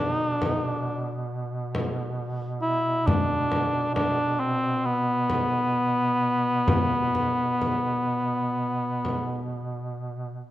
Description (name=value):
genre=caucasian folk, Caucasian lament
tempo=52-68 BPM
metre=4/4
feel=rubato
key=B phrygian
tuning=A4 = 438 Hz
part: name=dark cor anglais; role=melody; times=0.0-9.6 s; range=B3 to E4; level=-24 LUFS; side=equal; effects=none
part: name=warm duduk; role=drone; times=0.0-10.5 s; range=B2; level=-31 LUFS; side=right 1 dB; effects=none
part: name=frame drum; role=percussion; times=0.4-9.3 s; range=none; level=-28 LUFS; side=left 1 dB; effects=none
room=moderate scoring stage reverb, RT60 1.8 s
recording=dark, warm production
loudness=-23 LUFS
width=side -14 dB against mid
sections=0.0-10.5 A section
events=none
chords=none